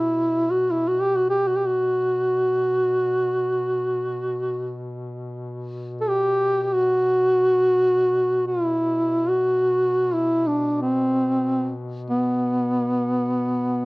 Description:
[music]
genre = caucasian folk, Caucasian lament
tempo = free time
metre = none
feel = none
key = unclear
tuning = A4 = 440 Hz
[part]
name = mellow duduk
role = melody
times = 0.0-13.9 s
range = B3 to A4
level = -19 LUFS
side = equal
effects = cassette tape
[part]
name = warm duduk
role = drone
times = 0.0-13.9 s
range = B2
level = -33 LUFS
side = left 1 dB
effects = stereo widening, cassette tape
[sound]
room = light reverb, small room reverb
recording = home recording on cassette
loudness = -19 LUFS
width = side -24 dB against mid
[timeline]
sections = 0.0-13.9 A section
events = slowing down 9.6-13.9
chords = none

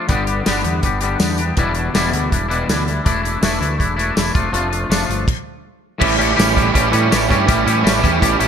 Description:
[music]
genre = indie rock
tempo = 162 BPM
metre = 4/4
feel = straight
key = A mixolydian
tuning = A4 = 443 Hz
[part]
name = twangy electric guitar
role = riff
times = 0.0-8.5 s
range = E2 to G4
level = -18 LUFS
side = left 3 dB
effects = analog chorus
[part]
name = growling fingered electric bass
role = bass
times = 0.1-8.5 s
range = E1 to A2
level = -22 LUFS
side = equal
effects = overdrive
[part]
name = loose indie drum kit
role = drums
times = 0.1-8.5 s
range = crash cymbal, hi-hat, kick drum, snare drum, tambourine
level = -19 LUFS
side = equal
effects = gated reverb
[part]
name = crunchy overdriven guitar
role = riff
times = 6.0-8.5 s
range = A2 to E4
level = -18 LUFS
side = right 12 dB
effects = wide subtle chorus
[sound]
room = moderate plate reverb, RT60 1.5 s, small room ambience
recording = bright 1980s-style digital production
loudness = -14 LUFS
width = side -8 dB against mid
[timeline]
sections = 0.0-6.0 A section; 6.0-8.5 B section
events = stop 5.3-6.0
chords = 0.1 G; 1.6 Em7; 3.0 Asus4/E; 4.3 Dm/F; 6.0 A7

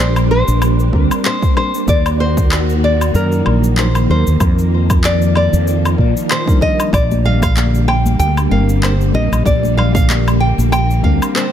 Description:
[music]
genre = sunset chillout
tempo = 95 BPM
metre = 4/4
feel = swing 56% on 16ths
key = Bb major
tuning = A4 = 438 Hz
[part]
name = nylon-string guitar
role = melody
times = 0.0-11.5 s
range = Bb4 to G5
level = -19 LUFS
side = left 1 dB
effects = ping-pong delay
[part]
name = soft string machine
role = sustained chords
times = 0.0-11.5 s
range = D3 to Gb4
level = -20 LUFS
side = equal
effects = ensemble chorus
[part]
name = mellow fretless electric bass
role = bass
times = 0.0-11.2 s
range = G1 to Bb2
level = -14 LUFS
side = equal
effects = none
[part]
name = electronic woodblock, cabasa and handclaps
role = drums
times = 0.2-11.5 s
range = none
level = -21 LUFS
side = left 2 dB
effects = overdrive, small room ambience
[part]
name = mellow tine electric piano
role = accompaniment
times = 0.9-11.5 s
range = Gb3 to Bb4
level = -22 LUFS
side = equal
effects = auto-pan, digital delay
[part]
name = electronic kick drum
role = drums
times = 0.9-11.2 s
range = none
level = -16 LUFS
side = equal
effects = overdrive, small room ambience
[part]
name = congas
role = percussion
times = 7.1-11.2 s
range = none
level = -24 LUFS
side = left 5 dB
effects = none
[sound]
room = little or no reverb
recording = none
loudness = -11 LUFS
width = side -10 dB against mid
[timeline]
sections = 0.0-11.5 A section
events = none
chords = 0.0 Bb69; 1.9 Ebm; 4.4 F13sus4; 6.9 Bb69

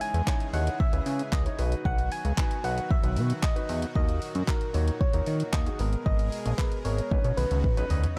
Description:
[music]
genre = dance-pop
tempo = 114 BPM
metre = 4/4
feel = straight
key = unclear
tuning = A4 = 440 Hz
[part]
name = soft struck synth lead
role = melody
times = 0.0-8.2 s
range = A#4 to G#5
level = -37 LUFS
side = equal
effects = chorus, dub echo
[part]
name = warm concert grand piano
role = accompaniment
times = 0.0-8.2 s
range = D#3 to C#5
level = -39 LUFS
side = equal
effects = none
[part]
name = supersaw pad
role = sustained chords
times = 0.0-8.2 s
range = A#2 to A#4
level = -43 LUFS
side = equal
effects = sidechain pumping
[part]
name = deep house drum kit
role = drums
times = 0.0-8.2 s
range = handclaps, hi-hat, kick drum, toms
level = -30 LUFS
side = equal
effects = none
[part]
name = chorused synth bass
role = bass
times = 0.1-8.1 s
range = G#1 to D#3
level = -30 LUFS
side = equal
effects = sidechain pumping
[sound]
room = digital ambience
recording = dark, warm production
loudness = -27 LUFS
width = mono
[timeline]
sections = 0.0-8.2 A section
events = drum fill 7.1-8.2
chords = 0.0 C#madd9; 1.6 B; 4.0 D#m; 5.8 G#madd9; 7.1 Badd9

